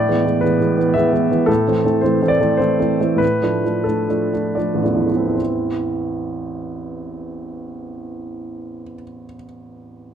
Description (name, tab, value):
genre	classical, romantic character piece for solo piano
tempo	72-114 BPM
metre	3/4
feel	rubato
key	A minor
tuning	A4 = 440 Hz
part	warm upright piano	solo	0.0-10.1 s	A1 to E5	-17 LUFS	right 1 dB	none
room	moderate recital hall reverb, RT60 1.5 s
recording	close, detailed microphones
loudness	-16 LUFS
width	side -8 dB against mid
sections	0.0-5.4 A section; 5.4-10.0 B section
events	slowing down 0.7-5.4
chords	0.0 E7; 1.5 Am; 3.2 Dm/A; 5.4 Am